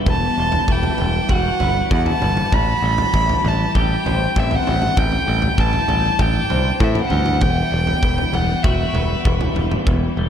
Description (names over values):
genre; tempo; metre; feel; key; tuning
post-rock; 98 BPM; 4/4; straight; E minor; A4 = 438 Hz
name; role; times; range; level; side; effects
twelve-string electric guitar; arpeggios; 0.0-10.3 s; E2 to G4; -23 LUFS; left 4 dB; ensemble chorus, ping-pong delay
rich violin; melody; 0.1-9.6 s; E5 to B5; -21 LUFS; right 2 dB; ping-pong delay
modern bright picked electric bass; bass; 0.1-10.3 s; E1 to A2; -21 LUFS; equal; none
big rock drum kit; drums; 0.1-10.0 s; kick drum, toms; -21 LUFS; equal; none
room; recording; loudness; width
moderate huge ambient reverb, RT60 4.9 s; dreamy mix soaked in reverb; -16 LUFS; side -9 dB against mid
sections
0.0-10.3 A section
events
none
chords
0.0 Emadd9; 2.5 Am7; 7.4 Emadd9